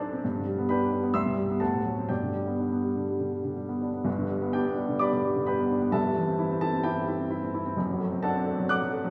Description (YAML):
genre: classical, virtuoso piano study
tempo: 120-134 BPM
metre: 4/4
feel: rubato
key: G major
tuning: A4 = 440 Hz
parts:
  - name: warm baby grand piano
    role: solo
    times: 0.0-9.1 s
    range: F#1 to A6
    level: -28 LUFS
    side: equal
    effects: none
room: wet recital hall reverb, RT60 1.5 s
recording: heard from further back in the room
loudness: -28 LUFS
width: mono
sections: 0.0-4.1 A section; 4.1-9.1 A section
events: none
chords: 0.2 G; 1.1 Cmaj7; 1.6 D7; 2.1 G; 5.9 Am7/G; 7.8 D7/F#